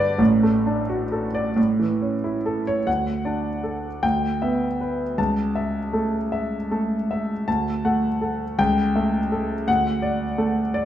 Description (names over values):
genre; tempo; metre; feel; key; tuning
classical, romantic character piece for solo piano; 42-57 BPM (dotted quarters); 6/8; rubato; D major; A4 = 440 Hz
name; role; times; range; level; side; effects
warm concert grand piano; solo; 0.0-10.8 s; A1 to A5; -20 LUFS; equal; none
room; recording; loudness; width
moderate recital hall reverb, RT60 1.3 s; none; -20 LUFS; side -11 dB against mid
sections
0.0-2.9 A section; 2.9-10.8 B section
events
none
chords
0.2 D/A; 1.6 A; 2.9 D; 4.0 Em7/D; 5.2 A/C#; 7.5 D; 8.6 A7/C#; 9.7 D